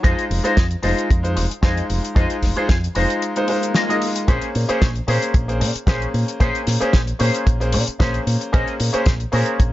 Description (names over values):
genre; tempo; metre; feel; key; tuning
nu-disco, nu disco; 113 BPM; 4/4; straight; Bb minor; A4 = 438 Hz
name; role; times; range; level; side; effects
bright grand piano; accompaniment; 0.0-9.7 s; Ab3 to Eb5; -23 LUFS; equal; sidechain pumping, slapback echo
electric guitar with an envelope filter; riff; 0.0-9.6 s; Db4 to Eb5; -25 LUFS; left 2 dB; analog chorus, low-pass filter, slapback echo
fingered electric bass with an envelope filter; bass; 0.0-9.7 s; F1 to Bb2; -21 LUFS; equal; tube saturation
damped 70s drum kit; drums; 0.0-9.7 s; hi-hat, snare drum; -26 LUFS; left 2 dB; none
kick drum; drums; 0.0-9.7 s; none; -18 LUFS; equal; none
swell; sound effects; 3.5-4.3 s; none; -29 LUFS; left 2 dB; none
room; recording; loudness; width
little or no reverb; nothing above 7.5 kHz; -17 LUFS; side -15 dB against mid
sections
0.0-9.7 A section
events
swell 3.5-4.3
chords
0.0 Fm7; 4.3 Bbm9